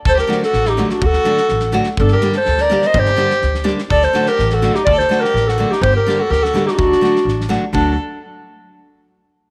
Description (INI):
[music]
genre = balkan folk, Balkan wedding band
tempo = 125 BPM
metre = 2/4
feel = straight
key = D phrygian dominant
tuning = A4 = 440 Hz
[part]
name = dark clarinet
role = melody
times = 0.1-8.0 s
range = D4 to Eb5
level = -18 LUFS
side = equal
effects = tape echo
[part]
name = warm violin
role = second line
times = 0.1-8.0 s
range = D4 to C5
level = -25 LUFS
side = equal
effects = none
[part]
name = upright bass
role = bass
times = 0.1-8.0 s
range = G1 to D2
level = -22 LUFS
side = equal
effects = none
[part]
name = loose indie drum kit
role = percussion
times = 0.1-8.0 s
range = kick drum, snare drum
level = -27 LUFS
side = equal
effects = none
[part]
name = nylon-string guitar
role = accompaniment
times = 0.3-8.0 s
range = D3 to G4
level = -23 LUFS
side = equal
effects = none
[sound]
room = light reverb, small room ambience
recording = none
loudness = -15 LUFS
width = mono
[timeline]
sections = 0.0-7.7 A section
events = none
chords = 0.0 D; 2.0 Gm; 3.9 D; 5.8 Gm; 6.8 D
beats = | 0.04 0.53 | 1.01 1.49 | 1.97 2.45 | 2.93 3.41 | 3.89 4.37 | 4.85 5.33 | 5.81 6.29 | 6.77 7.25 | 7.73